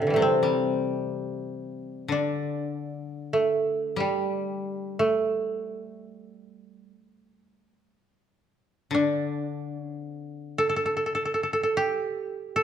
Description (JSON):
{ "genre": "japanese traditional, Japanese chamber music", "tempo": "free time", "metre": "none", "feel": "none", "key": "D suspended pentatonic", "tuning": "A4 = 440 Hz", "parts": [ { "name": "koto", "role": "melody", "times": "0.0-12.6 s", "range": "A2 to A4", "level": "-26 LUFS", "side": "right 2 dB", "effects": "none" }, { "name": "koto", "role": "accompaniment", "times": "0.2-12.0 s", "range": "C3 to G3", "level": "-30 LUFS", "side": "left 6 dB", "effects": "none" } ], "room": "moderate recital hall reverb, RT60 1.6 s", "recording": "minimal, uncompressed stereo recording", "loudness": "-25 LUFS", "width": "side -8 dB against mid", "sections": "0.0-12.6 A section", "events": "none", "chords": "none", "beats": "free time" }